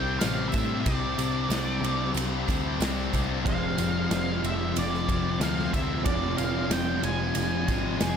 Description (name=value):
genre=rock, shoegaze and dream pop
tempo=92 BPM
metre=4/4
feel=straight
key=unclear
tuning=A4 = 440 Hz
part: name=octave-fuzz lead guitar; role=melody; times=0.0-8.2 s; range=Ab4 to Ab5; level=-33 LUFS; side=right 1 dB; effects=distortion, tape echo
part: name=thick fuzz guitar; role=riff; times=0.0-8.2 s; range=F2 to C4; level=-30 LUFS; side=left 9 dB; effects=distortion, lush chorus
part: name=tight distorted guitar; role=riff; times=0.0-8.2 s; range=F2 to D4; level=-33 LUFS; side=right 1 dB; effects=distortion
part: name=overdriven picked electric bass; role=bass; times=0.0-8.2 s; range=F1 to A2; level=-32 LUFS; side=right 1 dB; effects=none
part: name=big rock drum kit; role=drums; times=0.2-8.2 s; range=kick drum, ride cymbal, snare drum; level=-31 LUFS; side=right 1 dB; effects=none
part: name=tambourine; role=percussion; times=0.2-8.2 s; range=none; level=-43 LUFS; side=right 19 dB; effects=none
part: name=electric guitar through a small old amp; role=riff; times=3.4-8.2 s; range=F2 to D4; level=-33 LUFS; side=right 13 dB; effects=reverse reverb
room=light reverb, small room ambience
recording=none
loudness=-24 LUFS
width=side -7 dB against mid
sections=0.0-8.2 A section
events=none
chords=0.0 Csus2; 3.5 Fm6